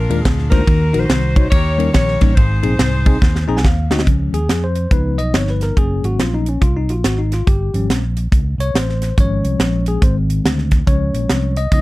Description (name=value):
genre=uptempo gospel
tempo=141 BPM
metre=4/4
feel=swing 63% on 8ths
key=Db major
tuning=A4 = 440 Hz
part: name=warm saxophone section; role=melody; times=0.0-3.6 s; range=D4 to Db5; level=-22 LUFS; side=left 2 dB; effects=none
part: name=bell-like tine electric piano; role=accompaniment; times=0.0-11.8 s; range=Ab2 to Bb5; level=-20 LUFS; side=left 2 dB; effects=medium stereo tremolo
part: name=fingered electric bass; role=bass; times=0.0-11.8 s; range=Gb1 to F2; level=-18 LUFS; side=equal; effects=none
part: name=crisp fusion drum kit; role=drums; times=0.1-11.8 s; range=hi-hat, kick drum, ride cymbal, snare drum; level=-16 LUFS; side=equal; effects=none
room=little or no reverb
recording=dark, warm production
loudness=-13 LUFS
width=side -19 dB against mid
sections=0.0-4.1 A section; 4.1-11.8 B section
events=drum fill 3.2-4.1; tine electric piano fill 3.2-4.1; tine electric piano solo 4.1-11.8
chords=0.0 Bb7; 0.7 Ebm; 1.5 Eb7; 2.4 Ab; 4.1 Db; 4.9 Db7; 5.8 Gb; 7.5 Gm9b5; 9.2 Db/Ab; 10.0 Ab; 10.9 Db